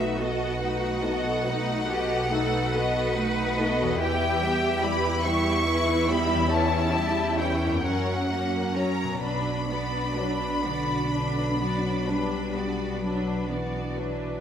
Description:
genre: classical, slow romantic movement for symphony orchestra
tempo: 42-48 BPM (dotted quarters)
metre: 12/8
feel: rubato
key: B minor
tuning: A4 = 441 Hz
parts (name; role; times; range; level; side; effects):
- clear symphonic violin section; melody; 0.0-13.5 s; E5 to C#6; -30 LUFS; left 2 dB; none
- rich symphonic violin section; second line; 0.0-14.4 s; D4 to E5; -31 LUFS; left 2 dB; none
- rich symphonic viola section; accompaniment; 0.0-14.4 s; E3 to F#4; -32 LUFS; right 1 dB; none
- concert harp; arpeggios; 0.0-13.1 s; E2 to A4; -35 LUFS; left 7 dB; none
- rich studio double bass section; bass; 0.0-14.4 s; B1 to F#2; -31 LUFS; right 3 dB; none
- rich symphonic cello section; bass; 0.0-14.2 s; C#4 to B4; -31 LUFS; right 2 dB; none
- mellow French horn section; sustained chords; 1.0-14.4 s; D3 to E4; -32 LUFS; left 3 dB; none
room: moderate scoring stage reverb, RT60 1.7 s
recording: none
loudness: -23 LUFS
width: side -8 dB against mid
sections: 0.0-14.4 A section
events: none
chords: 0.0 B7; 4.0 Em; 6.5 C#dim/E; 7.8 F#; 9.2 Bm

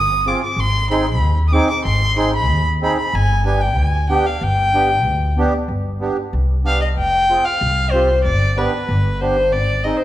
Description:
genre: klezmer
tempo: 94 BPM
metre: 2/4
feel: straight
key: G phrygian dominant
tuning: A4 = 439 Hz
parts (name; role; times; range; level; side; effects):
- warm violin; melody; 0.0-10.0 s; B4 to Eb6; -18 LUFS; left 1 dB; none
- upright bass; bass; 0.0-9.9 s; F1 to Eb2; -19 LUFS; equal; none
- accordion; accompaniment; 0.3-10.0 s; B3 to Ab4; -22 LUFS; right 2 dB; light tremolo tuning
room: wet recital hall reverb, RT60 1.7 s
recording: recorded in a church or concert hall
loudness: -15 LUFS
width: side -13 dB against mid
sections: 0.0-5.7 A section; 5.7-10.0 B section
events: violin solo 5.7-10.0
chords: 0.0 Fm; 0.6 Ab; 3.1 G; 7.0 F5; 8.2 G; 9.5 Ab

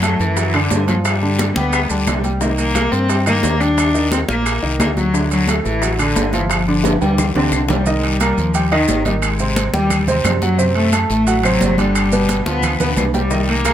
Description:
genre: latin, salsa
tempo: 176 BPM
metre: 4/4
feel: straight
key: C minor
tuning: A4 = 440 Hz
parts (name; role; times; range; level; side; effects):
- warm cello; melody; 0.0-13.7 s; D3 to D4; -19 LUFS; left 2 dB; none
- clear grand piano; accompaniment; 0.0-13.7 s; B2 to Bb5; -21 LUFS; right 2 dB; none
- fingered electric bass; bass; 0.0-13.7 s; G1 to G2; -20 LUFS; equal; none
- bongos; percussion; 0.0-7.8, 13.3-13.7 s; none; -27 LUFS; left 5 dB; none
- claves; percussion; 0.0-13.7 s; none; -27 LUFS; left 5 dB; none
- congas; percussion; 0.0-13.7 s; none; -25 LUFS; equal; none
- guiro; percussion; 0.0-13.7 s; none; -30 LUFS; left 6 dB; none
- maracas; percussion; 0.0-13.7 s; none; -30 LUFS; right 9 dB; none
- timbales; percussion; 0.0-13.7 s; none; -24 LUFS; right 6 dB; none
room: light reverb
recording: close, detailed microphones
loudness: -14 LUFS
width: side -10 dB against mid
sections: 0.0-7.9 A section; 7.9-13.7 A section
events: drum fill 6.8-7.9, 12.8-13.3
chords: 0.0 D/F#; 1.1 G7; 2.4 Cm7; 3.8 Ebmaj7; 5.1 D; 6.5 G7sus4; 7.9 Cm7; 9.2 Abmaj7; 10.6 D7; 12.0 G7

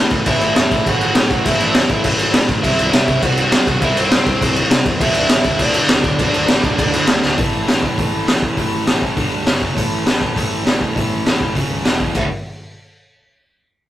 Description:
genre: punk rock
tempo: 202 BPM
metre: 4/4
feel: straight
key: D major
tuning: A4 = 440 Hz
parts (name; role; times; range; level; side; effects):
- cranked stack guitar; riff; 0.0-12.3 s; D2 to C4; -24 LUFS; right 5 dB; overdrive
- crunchy overdriven guitar; riff; 0.0-12.3 s; D2 to C4; -24 LUFS; left 5 dB; none
- modern bright picked electric bass; bass; 0.0-12.3 s; D1 to C3; -27 LUFS; equal; none
- raw garage drum kit; drums; 0.1-12.2 s; crash cymbal, hi-hat, kick drum, snare drum; -15 LUFS; equal; none
- bluesy overdriven lead guitar; melody; 0.3-7.1 s; C4 to G5; -21 LUFS; right 1 dB; distortion
room: light reverb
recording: rough rehearsal-room recording, tube saturation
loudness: -13 LUFS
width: side -13 dB against mid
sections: 0.0-7.4 A section; 7.4-12.2 B section; 12.2-13.4 C section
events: drum fill 7.2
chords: 0.0 A5; 2.6 C; 5.0 D5; 7.4 A5; 9.2 G5; 9.5 F#5; 9.8 A5; 11.6 F#5; 11.9 E5; 12.2 D5

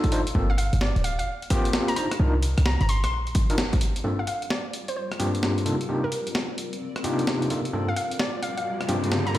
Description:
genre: UK garage, two-step garage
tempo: 130 BPM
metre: 4/4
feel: swing 65% on 16ths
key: G minor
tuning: A4 = 442 Hz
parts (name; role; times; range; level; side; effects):
- overdriven tine electric piano; stabs; 0.0-9.4 s; G2 to C5; -27 LUFS; equal; medium tremolo, ping-pong delay
- breakbeat sampler-style drum kit; drums; 0.0-9.4 s; hi-hat, rim click, snare drum; -30 LUFS; equal; none
- electronic kick drum; drums; 0.0-3.8 s; none; -24 LUFS; equal; overdrive
- short 808-style bass; bass; 0.3-4.0 s; D1 to C2; -24 LUFS; equal; none
- hollow square pluck; melody; 0.5-9.4 s; Bb4 to C6; -32 LUFS; equal; chorus, ping-pong delay
- granular cloud pad; texture; 4.6-9.4 s; G3 to D5; -34 LUFS; left 2 dB; built-in reverb, sidechain pumping
- riser; sound effects; 8.1-9.4 s; none; -33 LUFS; equal; none
room: light reverb, digital ambience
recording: played on a big sound system in a bare room, stone room reverb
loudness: -23 LUFS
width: side -14 dB against mid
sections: 0.0-4.0 A section; 4.0-9.4 B section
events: band accent 3.6; riser 8.1-9.4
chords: 0.3 Gm11; 2.0 Cm11; 4.0 Gm11; 5.7 Cm11; 7.7 Gm11

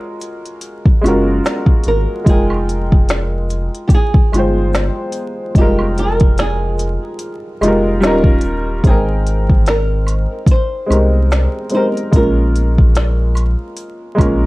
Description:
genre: lo-fi hip hop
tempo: 73 BPM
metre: 4/4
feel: swing 56% on 16ths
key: Ab major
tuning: A4 = 440 Hz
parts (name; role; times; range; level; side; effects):
- warm upright piano; accompaniment; 0.0-14.5 s; G3 to G5; -18 LUFS; equal; cassette tape, low-pass filter
- organic electronic drum kit; drums; 0.2-14.4 s; finger snaps, hi-hat, kick drum, snare drum; -13 LUFS; equal; vintage 12-bit sampler grit
- egg shaker and woodblock; percussion; 0.2-14.4 s; none; -30 LUFS; right 4 dB; none
- saturated sub bass; bass; 1.0-14.5 s; Eb1 to C2; -17 LUFS; equal; none
- flamenco guitar; melody; 1.9-13.7 s; G4 to C5; -23 LUFS; right 2 dB; low-pass filter, analog delay, plate reverb
room: light reverb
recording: vinyl crackle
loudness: -12 LUFS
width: side -20 dB against mid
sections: 0.0-8.8 A section; 8.8-14.5 B section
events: none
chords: 0.0 Gbmaj9; 2.3 Fm11; 8.0 Eb9; 8.8 Abmaj9; 12.1 Bbm7

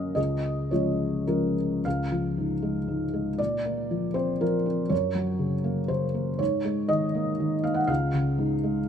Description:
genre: neoclassical minimalist piano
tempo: 119 BPM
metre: 3/4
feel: rubato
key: Db major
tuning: A4 = 441 Hz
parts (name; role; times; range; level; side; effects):
- felt-muted upright piano; solo; 0.0-8.9 s; Db2 to Gb5; -24 LUFS; equal; none
room: light reverb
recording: minimal, uncompressed stereo recording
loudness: -24 LUFS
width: side -8 dB against mid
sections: 0.0-1.8 A section; 1.8-8.9 A section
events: none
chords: 0.2 Db; 3.4 Bbadd9; 4.9 Gb; 6.4 Absus2; 7.9 Db

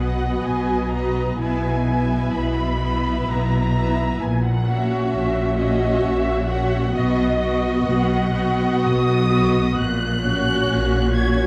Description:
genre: classical, slow romantic movement for string orchestra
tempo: 65 BPM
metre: 3/4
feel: rubato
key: B major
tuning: A4 = 444 Hz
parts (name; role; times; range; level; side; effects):
- warm studio violin section; melody; 0.0-11.5 s; D#5 to G#6; -29 LUFS; equal; none
- clear studio violin section; second line; 0.0-11.5 s; F#4 to E5; -32 LUFS; equal; none
- dark studio viola section; accompaniment; 0.0-11.5 s; B3 to F#4; -26 LUFS; equal; none
- rich studio cello section; bass; 0.0-11.5 s; A#2 to B2; -27 LUFS; equal; none
- rich studio double bass section; bass; 0.0-11.5 s; A#1 to B1; -26 LUFS; equal; none
room: moderate concert hall reverb, RT60 2.4 s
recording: dark, warm production, vinyl crackle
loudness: -20 LUFS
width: mono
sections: 0.0-11.5 A section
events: none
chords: 0.0 B; 1.4 E/B; 4.2 F#7/A#; 6.9 B; 9.8 F#/A#

